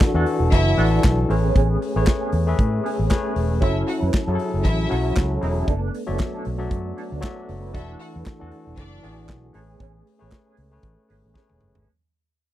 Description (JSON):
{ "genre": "disco", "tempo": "116 BPM", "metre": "4/4", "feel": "swing 56% on 16ths", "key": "unclear", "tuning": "A4 = 435 Hz", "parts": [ { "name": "barky tine electric piano", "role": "accompaniment", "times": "0.0-11.9 s", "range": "E3 to E5", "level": "-27 LUFS", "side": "left 5 dB", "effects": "none" }, { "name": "mellow electric guitar", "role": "accompaniment", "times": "0.0-11.9 s", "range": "B3 to B4", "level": "-31 LUFS", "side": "right 6 dB", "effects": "wah, tremolo" }, { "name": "tonewheel organ", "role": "sustained chords", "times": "0.0-11.8 s", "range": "E3 to A4", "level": "-30 LUFS", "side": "right 2 dB", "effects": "chorus vibrato, lush chorus" }, { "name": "vintage muted fingered electric bass", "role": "bass", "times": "0.0-11.9 s", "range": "E1 to A2", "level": "-22 LUFS", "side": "equal", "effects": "none" }, { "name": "modern studio drum kit", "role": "drums", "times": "0.0-11.9 s", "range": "handclaps, hi-hat, kick drum, snare drum, toms", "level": "-20 LUFS", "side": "equal", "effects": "none" }, { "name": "rich studio string section", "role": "second line", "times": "0.5-9.3 s", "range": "D4 to F#5", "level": "-29 LUFS", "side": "equal", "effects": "none" } ], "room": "small room ambience", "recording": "dry, close 1970s-style studio recording", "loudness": "-19 LUFS", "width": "side -13 dB against mid", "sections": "0.0-11.9 A section", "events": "fade-out 0.0-11.9; drum fill 11.4-11.9", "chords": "0.0 E9sus4; 1.3 Amaj9; 3.6 F#m7; 5.7 Bm11/F#; 7.7 E9sus4; 9.6 Amaj9" }